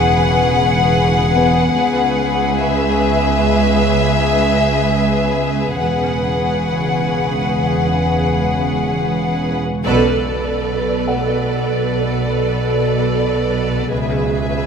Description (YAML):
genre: cinematic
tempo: free time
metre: none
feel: none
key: unclear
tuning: A4 = 440 Hz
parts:
  - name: warm studio violin section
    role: melody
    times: 0.0-14.7 s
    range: D5 to F#5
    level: -20 LUFS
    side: left 4 dB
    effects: none
  - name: warm studio violin section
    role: second line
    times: 0.0-14.7 s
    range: G#4 to B4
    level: -21 LUFS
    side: left 3 dB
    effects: none
  - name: dark studio cello section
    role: bass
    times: 0.0-14.7 s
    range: C#2 to C#3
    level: -21 LUFS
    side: right 3 dB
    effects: none
  - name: rich studio double bass section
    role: bass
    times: 0.0-14.7 s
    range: E1 to C#2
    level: -22 LUFS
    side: right 4 dB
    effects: none
  - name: organ-like drone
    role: drone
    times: 0.0-14.7 s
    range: B1 to C#2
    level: -24 LUFS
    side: left 1 dB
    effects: ensemble chorus, built-in reverb
  - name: felt-muted upright piano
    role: texture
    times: 1.3-13.9 s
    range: B3 to F#5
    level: -27 LUFS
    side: left 1 dB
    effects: none
  - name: rich studio viola section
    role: accompaniment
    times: 9.8-14.7 s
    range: G#4 to A4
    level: -21 LUFS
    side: right 3 dB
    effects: none
room: wet scoring stage reverb, RT60 1.9 s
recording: minimal, uncompressed stereo recording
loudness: -14 LUFS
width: side -6 dB against mid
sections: 0.0-9.9 A section; 9.9-14.7 B section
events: band accent 9.9-10.7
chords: 0.0 Eadd9; 1.7 C#m7; 5.8 Eadd9; 9.9 Bm7; 13.9 C#m7